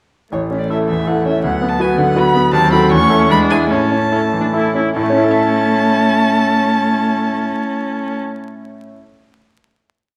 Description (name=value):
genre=quick classical-period movement for piano quartet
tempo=141-166 BPM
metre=3/4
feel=rubato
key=A major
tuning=A4 = 440 Hz
part: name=muted violin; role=melody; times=0.3-8.2 s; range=C#5 to C#6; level=-21 LUFS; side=equal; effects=none
part: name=muted cello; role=second line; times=0.3-8.2 s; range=E3 to A3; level=-23 LUFS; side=equal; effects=none
part: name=bright grand piano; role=accompaniment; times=0.3-9.1 s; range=A1 to E5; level=-19 LUFS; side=equal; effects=none
part: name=muted viola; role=accompaniment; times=0.3-8.2 s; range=A3 to E4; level=-24 LUFS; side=equal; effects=none
room=moderate scoring stage reverb, RT60 1.7 s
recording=vinyl crackle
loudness=-15 LUFS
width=mono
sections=0.3-5.0 A section; 5.0-7.4 final chord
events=slowing down 2.0-5.0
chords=0.3 A; 1.4 Bm/D; 2.5 D#dim7; 2.9 A/E; 3.3 E7; 3.7 A